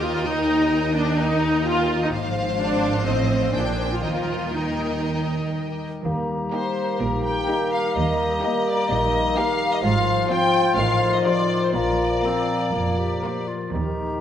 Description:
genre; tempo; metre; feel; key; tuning
classical, dramatic, fast romantic movement for symphony orchestra; 118-130 BPM; 4/4; rubato; Eb major; A4 = 443 Hz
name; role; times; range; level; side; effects
warm symphonic violin section; melody; 0.0-13.4 s; Bb4 to Ab5; -28 LUFS; left 3 dB; none
rich studio violin section; second line; 0.0-13.6 s; F4 to G5; -30 LUFS; left 1 dB; none
clear symphonic viola section; accompaniment; 0.0-13.6 s; F3 to F4; -25 LUFS; equal; none
concert harp; arpeggios; 0.0-14.2 s; Ab2 to G5; -30 LUFS; left 6 dB; none
clear symphonic cello section; bass; 0.0-14.1 s; Eb2 to Eb3; -29 LUFS; right 3 dB; none
rich symphonic double bass section; bass; 0.0-14.1 s; F1 to Eb2; -29 LUFS; right 4 dB; none
clear clarinet; second line; 6.0-14.2 s; Bb3 to G4; -30 LUFS; left 2 dB; none
mellow bassoon; accompaniment; 6.0-14.2 s; Eb3 to Bb3; -28 LUFS; right 2 dB; none
mellow French horn section; sustained chords; 6.0-13.9 s; Eb3 to C5; -28 LUFS; left 2 dB; none
concert flute; second line; 6.1-14.2 s; Bb5 to C6; -28 LUFS; left 1 dB; none
room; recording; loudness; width
wet scoring stage reverb, RT60 1.5 s; none; -20 LUFS; side -9 dB against mid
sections
0.0-6.0 A section; 6.0-14.2 A section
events
none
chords
0.0 Eb; 2.1 Fm/Ab; 3.1 F7/A; 3.5 Bb13; 4.0 Eb; 9.8 Fm/Ab; 10.8 F7/A; 11.7 Bb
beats
| 0.26 0.73 1.20 1.66 | 2.13 2.60 3.07 3.55 | 4.04 4.55 5.05 5.55 | 6.05 6.53 7.01 7.48 | 7.96 8.44 8.91 9.37 | 9.83 10.30 10.77 11.25 | 11.74 12.24 12.73 13.23 | 13.72

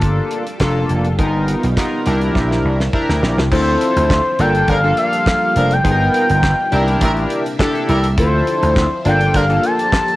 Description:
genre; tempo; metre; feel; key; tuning
early-eighties boogie funk; 103 BPM; 4/4; straight; unclear; A4 = 440 Hz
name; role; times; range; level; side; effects
chorused polysynth; accompaniment; 0.0-10.2 s; Bb3 to A#4; -19 LUFS; left 1 dB; cassette tape
string machine, full ensemble; sustained chords; 0.0-10.2 s; C3 to E5; -26 LUFS; equal; phaser, ensemble chorus, cassette tape
vintage slap bass; bass; 0.0-9.6 s; F1 to D2; -17 LUFS; equal; none
damped 70s drum kit; drums; 0.0-10.2 s; crash cymbal, handclaps, hi-hat, kick drum, snare drum; -20 LUFS; equal; none
expressive portamento lead; melody; 3.5-10.2 s; C5 to A5; -17 LUFS; left 1 dB; chorus, cassette tape
warm horn section; second line; 4.4-9.4 s; F3 to Bb4; -22 LUFS; right 1 dB; cassette tape
room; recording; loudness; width
studio ambience; home recording on cassette; -13 LUFS; side -17 dB against mid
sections
0.0-3.5 A section; 3.5-10.2 B section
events
drum fill 2.4-3.5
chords
0.0 Gm9; 1.2 G7alt; 2.1 C9; 3.5 Dm9; 4.4 Gm9; 5.8 G7alt; 6.7 C9; 8.2 Dm9; 9.1 Gm9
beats
0.02 0.60 | 1.19 1.77 2.35 2.94 | 3.52 4.10 4.68 5.27 | 5.85 6.43 7.01 7.60 | 8.18 8.76 9.34 9.93

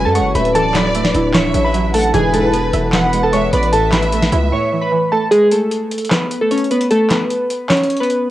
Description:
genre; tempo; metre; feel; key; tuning
hip hop, trap; 151 BPM; 4/4; half-time; unclear; A4 = 440 Hz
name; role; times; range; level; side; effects
glassy digital keys; melody; 0.0-8.3 s; G#3 to C#6; -16 LUFS; equal; chorus, low-pass filter, cassette tape
warm studio violin section; second line; 0.0-4.9 s; B4 to G#5; -22 LUFS; equal; cassette tape, tape echo
string-like resonator pluck; accompaniment; 0.0-5.3 s; A2 to E5; -22 LUFS; right 6 dB; chorus, low-pass filter, cassette tape
warbly tape-like pad; sustained chords; 0.0-5.3 s; E3 to B4; -23 LUFS; left 2 dB; chorus, built-in reverb, cassette tape
distorted 808-style bass; bass; 0.0-4.5 s; D1 to F#2; -19 LUFS; equal; distortion
booming analog drum machine; drums; 0.2-8.2 s; handclaps, hi-hat, snare drum; -19 LUFS; equal; none
chorused polysynth; stabs; 2.1-2.5 s; B1 to E3; -22 LUFS; left 6 dB; cassette tape
room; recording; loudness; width
light reverb; home recording on cassette; -13 LUFS; side -14 dB against mid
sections
0.0-5.3 A section; 5.3-8.3 B section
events
break 4.5-5.3; kick muted 5.3-8.3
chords
0.0 F#madd9; 0.5 Dadd9; 2.1 E; 3.7 Asus2; 5.3 Amaj9/G#; 6.9 Aadd9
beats
0.15 | 0.55 0.95 1.34 1.74 | 2.14 2.54 2.93 3.33 | 3.73 4.12 4.52 4.92 | 5.32 5.71 6.11 6.51 | 6.91 7.30 7.70 8.10

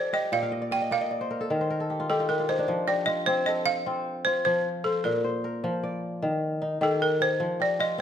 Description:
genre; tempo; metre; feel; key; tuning
west african traditional; 102 BPM (dotted quarters); 12/8; straight; F mixolydian; A4 = 440 Hz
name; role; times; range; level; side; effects
balafon; melody; 0.0-8.0 s; A4 to G5; -26 LUFS; equal; none
kora; arpeggios; 0.0-8.0 s; Bb2 to G5; -28 LUFS; left 1 dB; none
room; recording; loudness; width
moderate recital hall reverb, RT60 1.3 s; none; -24 LUFS; side -9 dB against mid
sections
0.0-2.7 A section; 2.7-8.0 B section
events
kora fill 0.3-2.7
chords
0.3 Bb; 1.5 Eb; 2.7 F; 5.0 Bb; 6.2 Eb; 7.4 F5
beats
| 0.33 0.92 1.51 2.10 | 2.69 3.28 3.87 4.46 | 5.05 5.63 6.22 6.81 | 7.40 7.99

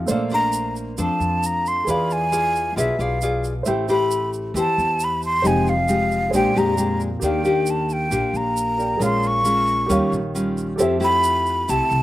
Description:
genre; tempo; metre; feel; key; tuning
bossa nova; 134 BPM; 4/4; straight; unclear; A4 = 439 Hz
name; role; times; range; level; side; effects
nylon-string guitar; accompaniment; 0.0-12.0 s; Bb2 to D5; -22 LUFS; left 2 dB; none
warm grand piano; accompaniment; 0.0-12.0 s; A3 to G5; -27 LUFS; right 3 dB; slapback echo
upright bass; bass; 0.0-12.0 s; F1 to F2; -28 LUFS; equal; none
tube shaker; percussion; 0.1-12.0 s; none; -34 LUFS; right 7 dB; none
breathy hollow jazz flute; melody; 0.3-12.0 s; E5 to Db6; -21 LUFS; equal; none
room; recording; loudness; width
little or no reverb; recorded outdoors, with no room sound; -18 LUFS; side -15 dB against mid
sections
0.1-12.0 A section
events
none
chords
0.1 Bbmaj9; 1.9 E7b9; 3.7 Am7; 5.4 Fm9; 6.3 Bb13; 7.2 Ebmaj7; 9.0 Bbm7; 9.9 Eb9; 10.8 Fmaj9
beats
| 0.08 0.53 0.97 1.42 | 1.87 2.31 2.76 3.21 | 3.65 4.10 4.55 4.99 | 5.44 5.88 6.33 6.78 | 7.22 7.67 8.12 8.56 | 9.01 9.45 9.90 10.35 | 10.79 11.24 11.68

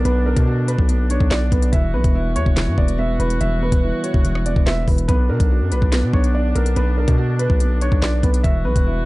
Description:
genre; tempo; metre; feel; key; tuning
hip hop, drill; 143 BPM; 4/4; half-time; B harmonic minor; A4 = 441 Hz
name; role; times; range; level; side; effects
dark baby grand piano; melody; 0.0-9.0 s; A#4 to E5; -26 LUFS; equal; low-pass filter
felt-muted upright piano; accompaniment; 0.0-9.1 s; E3 to B4; -24 LUFS; right 2 dB; low-pass filter
mellow woodwind section; sustained chords; 0.0-9.1 s; D3 to F#4; -30 LUFS; left 1 dB; none
distorted 808-style bass; bass; 0.0-9.1 s; E1 to B2; -19 LUFS; equal; distortion
downlifter; sound effects; 0.0-1.7 s; none; barely audible; none; none
drill drum kit; drums; 0.1-8.9 s; handclaps, hi-hat, kick drum, rim click, snare drum; -18 LUFS; equal; none
room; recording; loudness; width
small room ambience; dark, warm production, nothing above 11.0 kHz; -16 LUFS; side -20 dB against mid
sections
0.0-9.1 A section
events
none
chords
0.0 Bm; 1.7 Emadd9; 5.1 Bm; 8.4 Emadd9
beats
| 0.05 0.47 0.89 1.31 | 1.73 2.15 2.57 2.99 | 3.41 3.83 4.25 4.67 | 5.09 5.51 5.92 6.34 | 6.76 7.18 7.60 8.02 | 8.44 8.86

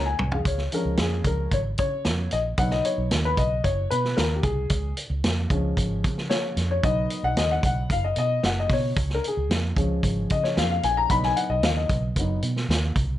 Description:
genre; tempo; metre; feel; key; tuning
uptempo 1960s-style soul; 113 BPM; 4/4; straight; Db mixolydian; A4 = 440 Hz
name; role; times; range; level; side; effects
warm upright piano; accompaniment; 0.0-12.4 s; F3 to Cb6; -26 LUFS; left 3 dB; none
vintage muted fingered electric bass; bass; 0.0-13.2 s; Gb1 to Db3; -26 LUFS; right 1 dB; none
vintage drum kit; drums; 0.2-13.1 s; hi-hat, kick drum, snare drum, toms; -26 LUFS; right 1 dB; none
room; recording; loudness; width
light reverb; nothing above 10.9 kHz; -22 LUFS; side -13 dB against mid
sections
0.5-13.2 A section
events
drum fill 0.0-0.5; upright piano solo 0.5-13.2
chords
0.5 Db; 2.6 Cb; 4.7 Db; 6.8 Cb; 9.0 Db; 11.1 Cb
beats
| 0.45 0.99 1.52 2.05 | 2.58 3.12 3.65 4.18 | 4.71 5.25 5.78 6.31 | 6.84 7.38 7.91 8.44 | 8.97 9.50 10.04 10.57 | 11.10 11.63 12.16 12.70

